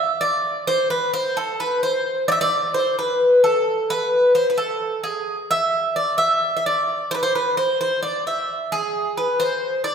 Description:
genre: greek folk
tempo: 261 BPM (eighths)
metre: 7/8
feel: straight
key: unclear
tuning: A4 = 439 Hz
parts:
  - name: Greek bouzouki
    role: solo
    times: 0.0-9.9 s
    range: G#4 to E5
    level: -18 LUFS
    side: equal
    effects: none
room: wet concert hall reverb, RT60 1.7 s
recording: recorded in a church or concert hall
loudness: -18 LUFS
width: side -7 dB against mid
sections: 0.0-8.7 A section; 8.7-9.9 B section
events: none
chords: none

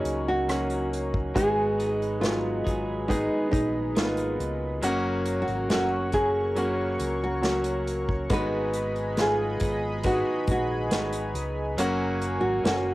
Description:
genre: pop ballad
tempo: 69 BPM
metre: 4/4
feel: straight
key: unclear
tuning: A4 = 440 Hz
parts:
  - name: nylon-string guitar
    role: melody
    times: 0.0-12.9 s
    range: Eb4 to Cb5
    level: -28 LUFS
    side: equal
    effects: cassette tape
  - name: bright concert grand piano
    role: accompaniment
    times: 0.0-12.9 s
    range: Ab2 to Ab4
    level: -28 LUFS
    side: equal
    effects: cassette tape
  - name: chorused pulse-width pad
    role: sustained chords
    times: 0.0-12.9 s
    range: Ab4 to Db6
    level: -35 LUFS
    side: equal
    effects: cassette tape
  - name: electric guitar at the edge of break-up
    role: arpeggios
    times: 0.0-12.9 s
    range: Gb2 to Ab4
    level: -39 LUFS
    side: right 2 dB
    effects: spring reverb, cassette tape, tape echo
  - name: fingered electric bass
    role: bass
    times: 0.0-12.9 s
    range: Gb1 to Db2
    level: -33 LUFS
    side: equal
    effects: none
  - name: unplugged drum kit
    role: drums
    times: 0.1-12.9 s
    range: hi-hat, kick drum, rim click, snare drum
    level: -29 LUFS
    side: equal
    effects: none
room: little or no reverb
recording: home recording on cassette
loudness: -24 LUFS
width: side -18 dB against mid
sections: 0.0-12.9 A section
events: none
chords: 0.0 Gb; 1.4 Abm7; 4.8 Gb; 8.3 Abm7; 11.8 Gb

